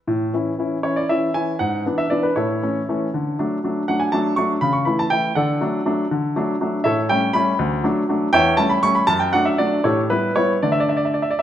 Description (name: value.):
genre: classical-period piano sonatina.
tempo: 80 BPM (dotted quarters).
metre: 6/8.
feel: rubato.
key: A major, D major from 6.1 s.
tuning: A4 = 440 Hz.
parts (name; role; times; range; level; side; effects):
clear baby grand piano; solo; 0.1-11.4 s; D2 to C#6; -17 LUFS; equal; none.
room: wet recital hall reverb, RT60 1.6 s.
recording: none.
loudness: -17 LUFS.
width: side -11 dB against mid.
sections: 0.1-11.4 A section.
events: none.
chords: 0.1 A; 1.6 E7/G#; 2.4 A; 3.1 D; 4.6 A/C#; 5.4 D; 6.9 A7; 7.6 D; 8.3 A7/E; 9.1 D/F#; 9.9 Asus2; 10.6 D5.